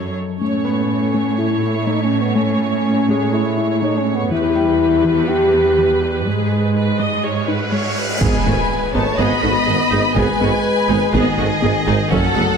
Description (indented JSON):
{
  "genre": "cinematic, hybrid orchestral and electronic film score",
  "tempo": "123 BPM",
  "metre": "4/4",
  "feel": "straight",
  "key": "G# phrygian",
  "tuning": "A4 = 440 Hz",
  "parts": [
    { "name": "rich symphonic viola section", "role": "accompaniment", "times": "0.0-12.4 s", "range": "G#3 to D#5", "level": "-23 LUFS", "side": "right 3 dB", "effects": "none" },
    { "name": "soft round pluck", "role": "arpeggios", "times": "0.0-12.5 s", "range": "E3 to A4", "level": "-26 LUFS", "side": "left 3 dB", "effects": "chorus, ping-pong delay" },
    { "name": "rich symphonic cello section", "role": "bass", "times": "0.0-12.4 s", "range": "E2 to A2", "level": "-22 LUFS", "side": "right 5 dB", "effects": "none" },
    { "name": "bright baby grand piano", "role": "texture", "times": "0.0-12.6 s", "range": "G3 to C#5", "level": "-31 LUFS", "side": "left 1 dB", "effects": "ping-pong delay" },
    { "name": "mellow French horn section", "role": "sustained chords", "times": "0.4-12.6 s", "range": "D#3 to G4", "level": "-20 LUFS", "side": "left 3 dB", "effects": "none" },
    { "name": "cymbal swell and impact", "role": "sound effects", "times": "7.3-10.2 s", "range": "none", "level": "-25 LUFS", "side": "right 1 dB", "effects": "none" },
    { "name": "rich symphonic violin section", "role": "melody", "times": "8.2-12.6 s", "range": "D#5 to B5", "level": "-22 LUFS", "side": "left 3 dB", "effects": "none" },
    { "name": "rich symphonic violin section", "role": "second line", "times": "8.2-12.6 s", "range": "G#4 to D#5", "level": "-21 LUFS", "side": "left 1 dB", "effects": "none" },
    { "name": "clear tuba", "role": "bass", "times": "8.2-12.4 s", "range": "F#1 to G#1", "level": "-25 LUFS", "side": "right 5 dB", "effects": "none" },
    { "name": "rich symphonic double bass section", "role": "bass", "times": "8.2-12.4 s", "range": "F#1 to G#1", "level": "-24 LUFS", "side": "right 4 dB", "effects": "none" },
    { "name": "taiko ensemble", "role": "drums", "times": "8.2-12.6 s", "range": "none", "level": "-25 LUFS", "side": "equal", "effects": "none" }
  ],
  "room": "wet scoring stage reverb, RT60 1.7 s",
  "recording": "none",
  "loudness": "-15 LUFS",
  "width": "side -6 dB against mid",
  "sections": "0.0-8.2 A section; 8.2-12.6 B section",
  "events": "cymbal swell 7.3-8.2; impact 8.2-10.2",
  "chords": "0.4 A; 4.3 Em; 6.3 G#m"
}